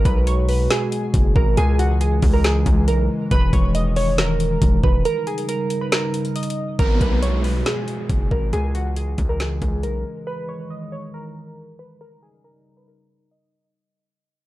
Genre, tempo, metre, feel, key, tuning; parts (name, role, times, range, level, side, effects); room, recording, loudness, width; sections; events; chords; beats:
hip hop, trap; 138 BPM; 4/4; half-time; G# minor; A4 = 440 Hz
glassy digital keys; melody; 0.0-13.7 s; F#4 to D#5; -25 LUFS; right 2 dB; chorus, low-pass filter, digital delay
dark analog pad; sustained chords; 0.0-13.7 s; B2 to F#4; -26 LUFS; left 1 dB; chorus, low-pass filter
distorted 808-style bass; bass; 0.0-10.0 s; E1 to C#2; -20 LUFS; equal; distortion
trap drum kit; drums; 0.1-9.9 s; hi-hat, kick drum, snare drum; -20 LUFS; equal; vintage 12-bit sampler grit
downlifter; sound effects; 6.8-10.3 s; -30 LUFS; equal
little or no reverb; dark, warm production; -17 LUFS; side -16 dB against mid
0.0-6.8 A section; 6.8-13.7 B section
break 5.1-6.8; fade-out 6.8-13.7; filter sweep 6.8-13.7
0.0 G#m7; 1.6 C#m; 3.3 Emaj7; 5.1 D#7; 6.8 G#m7; 8.5 C#m; 10.3 Emaj7; 12.0 D#7
0.27 0.70 1.14 | 1.57 2.01 2.44 2.88 | 3.31 3.75 4.18 4.62 | 5.05 5.49 5.92 6.36 | 6.79 7.23 7.66 8.10 | 8.53 8.96 9.40 9.83 | 10.27 10.70 11.14 11.57 | 12.01 12.44 12.88 13.31